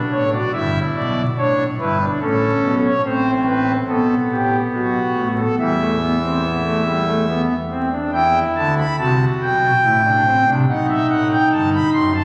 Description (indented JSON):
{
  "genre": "classical, baroque-style 3-part fugue for pipe organ",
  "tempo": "71 BPM",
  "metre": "3/4",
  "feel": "straight",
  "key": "E minor from 3.0 s",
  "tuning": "A4 = 439 Hz",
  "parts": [
    { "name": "pipe organ, foundations", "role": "solo", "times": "0.0-12.2 s", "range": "F#1 to C6", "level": "-18 LUFS", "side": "equal", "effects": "none" }
  ],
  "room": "wet cathedral reverb, RT60 4.0 s",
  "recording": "recorded on a phone in the room, studio reverb, vinyl crackle",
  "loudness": "-18 LUFS",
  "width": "mono",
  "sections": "0.0-8.1 A section; 8.1-12.2 B section",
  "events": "none",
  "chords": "0.0 Bm (rootless); 0.5 Em7/G; 2.2 A; 3.0 Amadd9; 3.9 Gadd9; 4.7 B5; 5.6 Em; 9.8 Am; 10.7 B7"
}